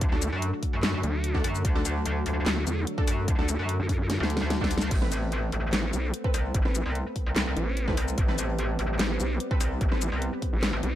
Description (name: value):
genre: heavy wobble dubstep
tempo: 147 BPM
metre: 4/4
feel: half-time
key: A dorian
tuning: A4 = 440 Hz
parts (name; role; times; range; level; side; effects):
- lush unison pad; sustained chords; 0.0-11.0 s; D3 to C4; -34 LUFS; equal; chorus, sidechain pumping
- metallic wobble bass; bass; 0.0-10.8 s; A1 to F#2; -28 LUFS; equal; chorus, overdrive
- dubstep drum kit; drums; 0.0-10.9 s; crash cymbal, handclaps, hi-hat, shaker, snare drum; -30 LUFS; left 1 dB; none
- electronic kick drum; drums; 0.0-10.5 s; none; -27 LUFS; equal; none
- orchestra-hit-like synth stab; stabs; 0.1-10.1 s; C4 to B4; -37 LUFS; right 1 dB; built-in reverb, dub echo
- vowel-sweep wobble bass; bass; 0.1-11.0 s; A1 to F#2; -28 LUFS; equal; chorus, overdrive
room: light reverb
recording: dark, warm production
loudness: -25 LUFS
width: side -12 dB against mid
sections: 0.0-11.0 A section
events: drum fill 4.1-4.9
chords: 0.0 D; 4.9 Amadd9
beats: | 0.01 0.42 0.83 1.24 | 1.65 2.06 2.46 2.87 | 3.28 3.69 4.10 4.50 | 4.91 5.32 5.73 6.14 | 6.54 6.95 7.36 7.77 | 8.18 8.59 8.99 9.40 | 9.81 10.22 10.63